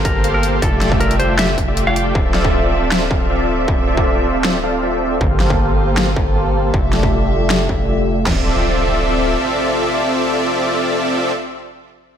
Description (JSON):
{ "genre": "future bass", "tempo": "157 BPM", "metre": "4/4", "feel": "swing 54% on 16ths, half-time", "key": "D minor", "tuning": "A4 = 439 Hz", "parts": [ { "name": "warm studio string section", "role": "sustained chords", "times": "0.0-11.3 s", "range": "C3 to E5", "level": "-28 LUFS", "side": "equal", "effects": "vintage 12-bit sampler grit, sidechain pumping" }, { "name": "dense compressed supersaw", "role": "riff", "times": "0.0-11.3 s", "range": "A3 to G5", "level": "-17 LUFS", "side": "equal", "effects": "sidechain pumping, low-pass filter, ping-pong delay" }, { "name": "long sustained 808-style bass", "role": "bass", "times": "0.0-9.4 s", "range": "D1 to G1", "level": "-20 LUFS", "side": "equal", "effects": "sidechain pumping" }, { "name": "semi-hollow electric guitar", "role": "melody", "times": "0.1-2.1 s", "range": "A4 to F5", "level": "-22 LUFS", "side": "equal", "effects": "sidechain pumping, ping-pong delay" }, { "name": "dubstep drum kit", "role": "drums", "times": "0.1-8.4 s", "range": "crash cymbal, kick drum, snare drum", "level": "-19 LUFS", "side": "equal", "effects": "distortion" }, { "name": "dubstep drum kit", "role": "drums", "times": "0.1-7.6 s", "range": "finger snaps, hi-hat, snare drum", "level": "-21 LUFS", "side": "left 1 dB", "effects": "none" }, { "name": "impact", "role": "sound effects", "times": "8.3-11.4 s", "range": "none", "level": "-29 LUFS", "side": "equal", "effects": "none" } ], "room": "light reverb, digital ambience", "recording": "none", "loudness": "-14 LUFS", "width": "side -9 dB against mid", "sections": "0.0-8.3 A section; 8.3-11.3 B section", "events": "filter sweep on supersaw synth 0.0-8.3", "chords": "0.0 Gm11; 0.6 Fmaj13; 2.2 Dm9; 5.2 Gm11; 6.7 Fmaj13; 8.3 Dm9" }